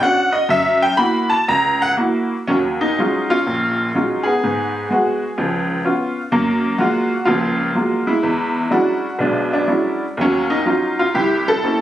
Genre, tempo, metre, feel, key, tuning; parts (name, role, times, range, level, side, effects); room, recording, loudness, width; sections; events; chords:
solo jazz; 124 BPM; 4/4; swing 67% on 8ths, rubato; Eb minor; A4 = 440 Hz
honky-tonk upright piano; solo; 0.0-11.8 s; Bb1 to B5; -15 LUFS; equal
light reverb; recorded on a phone in the room, club reverb; -15 LUFS; side -12 dB against mid
0.0-2.5 A section; 2.5-11.8 B section
honky-tonk piano solo 0.0-2.5
0.5 F#7; 2.5 Ebm11; 4.4 Abm7; 5.4 Db7; 6.3 Gbmaj9; 8.2 E13; 10.2 Ebm9; 11.2 C7b9